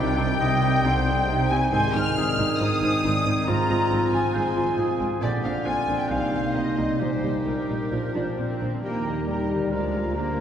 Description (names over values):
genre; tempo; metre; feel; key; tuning
classical; 136 BPM; 4/4; straight; Eb major; A4 = 439 Hz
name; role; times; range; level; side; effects
warm symphonic violin section; melody; 0.0-10.4 s; Bb4 to F6; -32 LUFS; left 2 dB; none
clear oboe; second line; 0.0-10.4 s; F4 to Eb5; -33 LUFS; right 2 dB; none
dark symphonic violin section; second line; 0.0-10.4 s; G4 to F6; -35 LUFS; left 1 dB; none
silver concert flute; second line; 0.0-10.4 s; Bb4 to F6; -30 LUFS; left 1 dB; none
warm clarinet; second line; 0.0-10.4 s; C4 to G4; -34 LUFS; equal; none
warm bassoon; accompaniment; 0.0-10.4 s; C3 to G3; -33 LUFS; equal; none
warm symphonic viola section; accompaniment; 0.0-10.4 s; F3 to Bb4; -33 LUFS; equal; none
dark French horn section; sustained chords; 0.0-10.4 s; F3 to Bb4; -29 LUFS; equal; none
concert harp; arpeggios; 0.0-10.4 s; Ab2 to Bb4; -32 LUFS; left 4 dB; none
rich symphonic double bass section; bass; 0.0-10.4 s; Ab1 to Eb2; -30 LUFS; right 2 dB; none
warm symphonic cello section; bass; 0.0-10.4 s; Ab2 to D4; -30 LUFS; right 2 dB; none
room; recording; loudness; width
wet cathedral reverb, RT60 4.3 s; recorded in a church or concert hall; -21 LUFS; side -9 dB against mid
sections
0.0-8.8 A section; 8.8-10.4 B section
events
none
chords
0.0 Cm; 1.7 Ab; 3.5 Fm/Ab; 5.2 Bbadd9; 6.1 Cm7; 7.0 Eb/Bb; 7.9 Bb; 8.8 Eb; 9.7 Bb7/D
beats
0.40 0.84 1.28 | 1.72 2.17 2.60 3.04 | 3.48 3.91 4.34 4.78 | 5.22 5.66 6.10 6.55 | 7.00 7.46 7.92 8.38 | 8.83 9.27 9.71 10.15